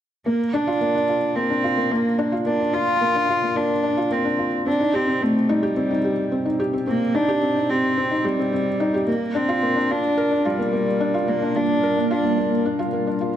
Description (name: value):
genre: electronica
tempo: 109 BPM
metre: 4/4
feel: straight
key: unclear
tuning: A4 = 440 Hz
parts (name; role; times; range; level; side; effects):
- warm cello; melody; 0.3-12.6 s; G3 to F4; -21 LUFS; right 1 dB; none
- granular cloud pad; sustained chords; 3.4-13.4 s; G3 to G5; -31 LUFS; equal; none
- felt-muted upright piano; riff; 0.3-13.4 s; Bb3 to Bb4; -23 LUFS; left 1 dB; none
room: moderate recital hall reverb, RT60 1.4 s, small room reverb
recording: none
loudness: -19 LUFS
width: side -10 dB against mid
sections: 0.3-13.4 A section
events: none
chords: 0.3 Bb; 4.7 Cm; 9.1 Gm7